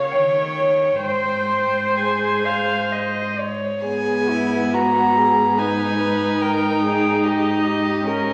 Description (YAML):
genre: classical, slow romantic movement for string quartet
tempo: 63-74 BPM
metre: 3/4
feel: rubato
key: Ab major, G# minor from 3.8 s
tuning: A4 = 440 Hz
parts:
  - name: rich violin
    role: melody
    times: 0.0-8.3 s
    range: D#5 to A#5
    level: -26 LUFS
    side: equal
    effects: none
  - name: dark violin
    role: second line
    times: 0.0-8.3 s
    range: E4 to F5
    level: -25 LUFS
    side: equal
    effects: none
  - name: warm viola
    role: accompaniment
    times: 0.0-8.3 s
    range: B3 to Db5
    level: -24 LUFS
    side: equal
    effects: none
  - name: dark cello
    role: bass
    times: 0.0-8.3 s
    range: Ab2 to Eb3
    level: -30 LUFS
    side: equal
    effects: none
room: wet recital hall reverb, RT60 1.7 s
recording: vinyl crackle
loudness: -20 LUFS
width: mono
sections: 0.0-3.8 A section; 3.8-8.3 B section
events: none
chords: 0.1 Eb7; 1.0 Ab; 3.8 G#m; 6.4 D#7/G#